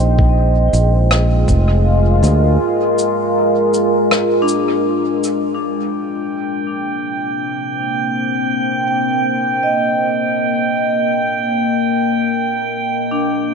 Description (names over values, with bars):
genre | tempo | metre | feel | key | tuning
ambient dub | 80 BPM | 4/4 | swing 54% on 16ths | C minor | A4 = 440 Hz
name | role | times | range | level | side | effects
deep dark ambient pad | sustained chords | 0.0-13.5 s | Ab3 to C5 | -18 LUFS | left 1 dB | chorus, built-in reverb
fingered electric bass | bass | 0.0-2.6 s | F1 to D2 | -13 LUFS | equal | none
electronic kick drum | drums | 0.2-1.6 s | none | -15 LUFS | equal | none
cabasa and rim click | drums | 0.7-5.4 s | none | -21 LUFS | left 1 dB | dub echo
vibraphone with medium mallets | arpeggios | 4.4-13.5 s | D4 to G5 | -21 LUFS | left 1 dB | low-pass filter, tape echo
drifting glass-harmonics texture | texture | 6.2-13.5 s | G5 | -20 LUFS | right 6 dB | chorus, built-in reverb
room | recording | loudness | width
light reverb, studio ambience | nothing above 10.9 kHz | -14 LUFS | side -5 dB against mid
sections
0.0-5.6 A section; 5.6-13.5 B section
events
filter sweep on vibraphone 0.0-5.6, 5.6-13.5; break 2.6-5.6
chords
0.0 Bb7; 5.6 Cm9; 11.6 Bb7